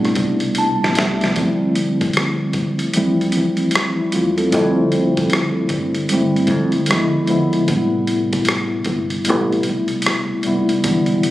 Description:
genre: R&B, neo-soul.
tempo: 76 BPM.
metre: 4/4.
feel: swing 63% on 16ths.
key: A minor.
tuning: A4 = 441 Hz.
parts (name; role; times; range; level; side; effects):
mellow tine electric piano; accompaniment; 0.0-11.3 s; B2 to A5; -17 LUFS; equal; medium stereo tremolo.
upright bass; bass; 0.0-11.3 s; E1 to A2; -24 LUFS; equal; none.
boom bap sampler-style drum kit; drums; 0.0-11.3 s; hi-hat, kick drum, rim click, snare drum; -22 LUFS; equal; none.
room: light reverb.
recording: recorded on a phone in the room, studio reverb, compression.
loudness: -15 LUFS.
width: side -15 dB against mid.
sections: 0.0-11.3 A section.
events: tine electric piano fill 0.2-1.4; drum fill 0.6-1.4.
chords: 0.0 Am9; 1.4 Dm11; 4.5 Fmaj13; 6.9 E7b9; 7.7 Am9.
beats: 0.58 | 1.37 2.16 2.95 3.74 | 4.53 5.32 6.11 6.90 | 7.68 8.47 9.26 10.05 | 10.84.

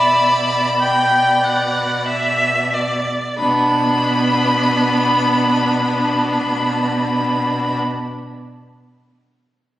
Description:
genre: classical, slow romantic movement for string quartet.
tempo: 44-51 BPM.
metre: 3/4.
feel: rubato.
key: B minor.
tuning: A4 = 440 Hz.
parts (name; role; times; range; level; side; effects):
clear violin; melody; 0.0-7.8 s; B5; -18 LUFS; equal; none.
rich violin; second line; 0.0-7.8 s; D4 to E5; -23 LUFS; left 1 dB; none.
clear viola; accompaniment; 0.0-7.8 s; B3 to G5; -19 LUFS; equal; none.
rich cello; bass; 0.0-7.8 s; B2; -23 LUFS; right 1 dB; none.
room: wet scoring stage reverb, RT60 1.7 s.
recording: recorded on a phone in the room, studio reverb, compression.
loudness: -15 LUFS.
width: side -14 dB against mid.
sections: 0.0-3.4 A section; 3.4-7.0 B section.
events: slowing down 0.0-3.4.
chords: 0.0 Bm.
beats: 0.82 2.08 | 3.39 4.60 5.79.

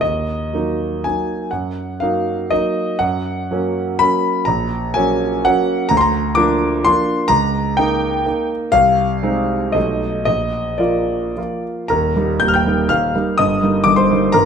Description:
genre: classical, romantic triple-time dance for piano with dotted rhythms.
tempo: 104-134 BPM.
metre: 3/4.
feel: rubato.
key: Eb minor, Eb major from 5.9 s.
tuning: A4 = 440 Hz.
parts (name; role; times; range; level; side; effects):
warm concert grand piano; solo; 0.0-14.5 s; Eb1 to G6; -15 LUFS; equal; none.
room: moderate recital hall reverb, RT60 1.8 s.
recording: close, detailed microphones.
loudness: -15 LUFS.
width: side -7 dB against mid.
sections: 0.0-11.9 A section; 11.9-14.5 B section.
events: none.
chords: 0.0 Ebm; 1.5 Ebm/Gb; 3.0 Gb; 4.5 Gb/Bb; 5.9 Bb/D; 7.3 Eb7/Db; 8.7 Ab/C; 9.8 B7; 10.3 Bb; 11.9 Eb; 13.4 Eb/G.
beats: | 0.01 0.53 1.04 | 1.52 2.01 2.51 | 2.98 3.49 4.00 | 4.47 4.95 5.43 | 5.89 6.36 6.85 | 7.30 7.78 8.26 | 8.73 9.23 9.76 | 10.28 10.82 11.37 | 11.90 12.40 12.89 | 13.36 13.85 14.34.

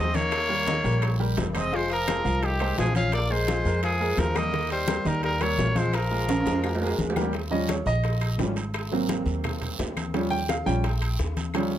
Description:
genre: Afro-Cuban jazz.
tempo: 171 BPM.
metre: 4/4.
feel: straight.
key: Eb mixolydian.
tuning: A4 = 441 Hz.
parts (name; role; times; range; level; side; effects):
clear trumpet; melody; 0.0-7.2 s; G4 to F5; -28 LUFS; equal; none.
edgy tenor saxophone; second line; 0.0-7.2 s; Eb3 to Db4; -32 LUFS; left 4 dB; none.
clear baby grand piano; accompaniment; 0.0-11.8 s; Eb3 to G5; -29 LUFS; right 1 dB; none.
upright bass; bass; 0.0-11.8 s; F1 to F2; -28 LUFS; equal; none.
congas; percussion; 0.1-11.8 s; none; -33 LUFS; left 4 dB; none.
guiro; percussion; 0.1-11.8 s; none; -41 LUFS; right 5 dB; none.
timbales; percussion; 0.1-11.7 s; none; -34 LUFS; right 4 dB; none.
bongos; percussion; 0.3-11.8 s; none; -36 LUFS; left 4 dB; none.
claves; percussion; 0.3-11.7 s; none; -39 LUFS; left 7 dB; none.
room: little or no reverb.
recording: close, detailed microphones.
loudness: -23 LUFS.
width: side -11 dB against mid.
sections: 0.0-7.3 A section; 7.3-11.8 B section.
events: drum fill 6.3-7.3; grand piano solo 7.3-11.8.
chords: 0.3 Eb9; 1.7 Fm7; 3.1 Bbsus2; 4.5 Eb9; 5.9 Bb5; 7.3 Eb9; 8.7 Ab9; 10.1 Eb9.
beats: | 0.32 0.67 1.02 1.37 | 1.72 2.08 2.43 2.78 | 3.13 3.48 3.83 4.18 | 4.53 4.88 5.23 5.58 | 5.94 6.29 6.64 6.99 | 7.34 7.69 8.04 8.39 | 8.74 9.09 9.44 9.79 | 10.14 10.49 10.84 11.19 | 11.54.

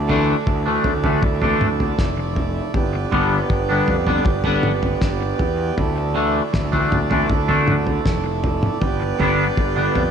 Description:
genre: psychedelic rock.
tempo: 79 BPM.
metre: 4/4.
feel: straight.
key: G mixolydian.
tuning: A4 = 438 Hz.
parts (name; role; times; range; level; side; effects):
hand-pumped harmonium; sustained chords; 0.0-10.1 s; A3 to D5; -24 LUFS; right 5 dB; none.
fuzz picked electric bass; bass; 0.0-10.1 s; F1 to F2; -24 LUFS; left 1 dB; overdrive.
twangy electric guitar; riff; 0.1-10.0 s; D3 to D4; -21 LUFS; left 2 dB; phaser, double-tracked left and right.
cloth-damped thuddy drum kit; drums; 0.1-10.1 s; kick drum, snare drum, toms; -22 LUFS; equal; none.
room: moderate lush hall reverb, RT60 2.0 s.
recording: dreamy mix soaked in reverb.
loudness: -17 LUFS.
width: side -7 dB against mid.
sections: 0.0-10.1 A section.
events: none.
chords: 0.0 Dsus2; 2.7 G; 5.8 Dsus2; 8.8 G.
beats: 0.47 1.23 1.98 | 2.74 3.50 4.26 5.02 | 5.78 6.54 7.30 8.05 | 8.81 9.57.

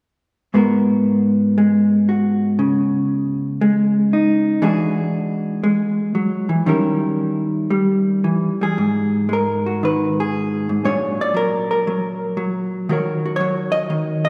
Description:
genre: solo jazz.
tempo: 118 BPM.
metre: 4/4.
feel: swing 69% on 8ths, rubato.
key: unclear.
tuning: A4 = 440 Hz.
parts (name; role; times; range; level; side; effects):
vintage hollow-body jazz guitar; solo; 0.5-14.3 s; G#2 to D#5; -19 LUFS; equal; none.
room: wet concert hall reverb, RT60 2.2 s.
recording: recorded in a church or concert hall.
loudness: -19 LUFS.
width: mono.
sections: 0.5-8.8 A section; 8.8-14.3 B section.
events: none.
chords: 0.5 G#m9; 2.6 C#sus2; 4.6 E9; 6.7 D#7b9; 8.8 G#sus2; 10.9 A#aug7; 12.9 D#m7.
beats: | 0.53 1.06 1.58 2.09 | 2.61 3.12 3.63 4.13 | 4.64 5.14 5.64 6.16 | 6.67 7.19 7.71 8.25 | 8.79 9.31 9.83 10.35 | 10.86 11.37 11.88 12.38 | 12.89 13.39 13.90.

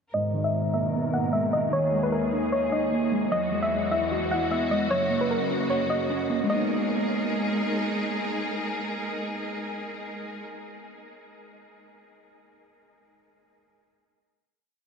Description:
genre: hip hop, trap.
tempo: 151 BPM.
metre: 4/4.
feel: half-time.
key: G# minor.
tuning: A4 = 439 Hz.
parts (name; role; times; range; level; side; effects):
soft round pluck; melody; 0.1-7.6 s; A#4 to F#5; -28 LUFS; equal; chorus, low-pass filter, tape echo.
mellow electric guitar; accompaniment; 0.1-11.2 s; G#2 to F#5; -28 LUFS; right 1 dB; low-pass filter.
rich studio string section; sustained chords; 0.1-10.4 s; D#2 to A#4; -30 LUFS; equal; low-pass filter.
room: wet huge ambient reverb, RT60 8.4 s.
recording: dreamy mix soaked in reverb.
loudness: -24 LUFS.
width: side -6 dB against mid.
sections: 0.1-6.5 breakdown; 6.5-9.7 final chord.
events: filter sweep 0.1-6.5.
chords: 0.1 G#madd9; 1.7 D#sus4; 3.3 Eadd9; 4.9 F#; 6.5 G#madd9.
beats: | 0.14 0.54 0.94 1.33 | 1.73 2.13 2.52 2.92 | 3.32 3.72 4.11 4.51 | 4.91 5.31 5.70 6.10 | 6.50 6.89 7.29 7.69 | 8.09 8.48 8.88 9.28.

